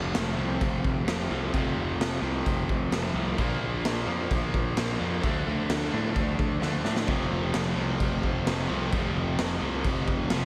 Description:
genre	quiet-loud alternative rock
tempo	130 BPM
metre	4/4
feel	straight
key	F major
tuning	A4 = 442 Hz
part	cranked stack guitar	riff	0.0-10.4 s	F2 to D4	-33 LUFS	equal	overdrive
part	crunchy overdriven guitar	riff	0.0-10.4 s	F2 to D4	-36 LUFS	equal	slapback echo
part	fuzz picked electric bass	bass	0.0-10.4 s	F1 to A2	-35 LUFS	equal	overdrive
part	raw garage drum kit	drums	0.1-10.4 s	crash cymbal, kick drum, snare drum	-32 LUFS	equal	none
part	high-gain distorted guitar	riff	7.1-10.4 s	F2 to F3	-38 LUFS	equal	distortion, slapback echo
room	moderate concert hall reverb, RT60 2.4 s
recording	big arena sound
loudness	-28 LUFS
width	mono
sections	0.0-10.4 A section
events	drum fill 6.6-7.1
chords	0.0 F; 3.4 Bb; 5.2 Dm; 7.1 F

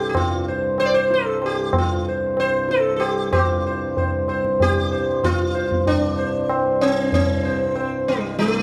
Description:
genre	indian classical, Hindustani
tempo	95 BPM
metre	4/4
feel	straight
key	C raga durga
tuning	A4 = 441 Hz
part	sitar	melody	0.0-8.6 s	G3 to D5	-22 LUFS	equal	none
part	hand-pumped harmonium	drone	0.0-8.6 s	C2 to G2	-30 LUFS	equal	none
part	tabla	percussion	0.1-8.6 s	none	-26 LUFS	equal	none
room	moderate scoring stage reverb, RT60 1.6 s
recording	none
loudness	-21 LUFS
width	mono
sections	0.0-3.3 A section; 3.3-8.6 B section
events	none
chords	none

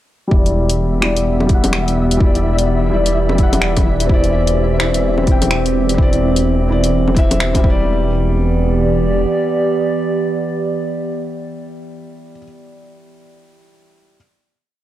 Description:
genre	future garage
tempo	127 BPM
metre	4/4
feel	swing 61% on 16ths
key	E minor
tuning	A4 = 439 Hz
part	felt-muted upright piano	accompaniment	0.3-14.2 s	G3 to G5	-21 LUFS	left 2 dB	vintage 12-bit sampler grit, sidechain pumping, low-pass filter, analog delay
part	warbly tape-like pad	sustained chords	0.8-12.4 s	E3 to D5	-20 LUFS	right 2 dB	chorus, built-in reverb, sidechain pumping
part	dark detuned saw bass	bass	0.3-9.3 s	E1	-17 LUFS	equal	sidechain pumping
part	electronic kick drum	drums	0.3-7.8 s	none	-14 LUFS	equal	none
part	flickering grainy texture	texture	0.6-7.9 s	E4 to E5	-28 LUFS	left 1 dB	built-in reverb
part	deep house drum kit	drums	0.5-7.6 s	bongos, finger snaps, hi-hat	-19 LUFS	left 1 dB	none
room	digital ambience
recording	dry, gritty hardware recording, cassette tape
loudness	-13 LUFS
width	side -13 dB against mid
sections	0.3-7.9 groove; 7.9-11.7 final chord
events	filter sweep on felt piano 0.3-7.9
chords	0.3 Em7; 4.1 Cadd9/E; 7.6 Em7

